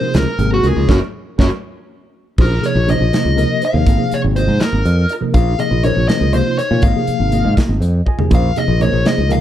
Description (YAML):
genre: electric jazz fusion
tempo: 81 BPM (dotted quarters)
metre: 6/8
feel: straight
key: Bb minor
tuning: A4 = 438 Hz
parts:
  - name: dark smooth lead guitar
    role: melody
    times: 0.0-9.4 s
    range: Gb4 to F5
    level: -20 LUFS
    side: left 2 dB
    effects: overdrive, slapback echo
  - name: tine electric piano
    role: accompaniment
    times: 0.0-9.4 s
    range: C3 to Ab5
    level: -20 LUFS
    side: equal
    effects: medium stereo tremolo, phaser
  - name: mellow electric guitar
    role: stabs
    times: 0.0-9.2 s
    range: Ab3 to Eb5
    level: -26 LUFS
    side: right 3 dB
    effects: wide subtle chorus
  - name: modern bright fingered electric bass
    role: bass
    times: 0.1-9.4 s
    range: Gb1 to Bb2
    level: -15 LUFS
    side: equal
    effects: none
  - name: modern studio drum kit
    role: drums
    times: 0.1-9.4 s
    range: crash cymbal, hi-hat, kick drum, snare drum, toms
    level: -17 LUFS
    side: equal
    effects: none
room: little or no reverb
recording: dark, warm production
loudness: -13 LUFS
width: side -11 dB against mid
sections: 0.0-2.4 A section; 2.4-9.4 B section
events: band accent 0.9-2.4; drum fill 1.6-2.4, 8.1; tine electric piano fill 7.6-8.3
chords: 0.0 Db6; 0.9 Gb5; 2.4 Bbm11; 3.9 Ab69; 5.3 Bbm11; 6.8 Ab69; 8.3 Bbm11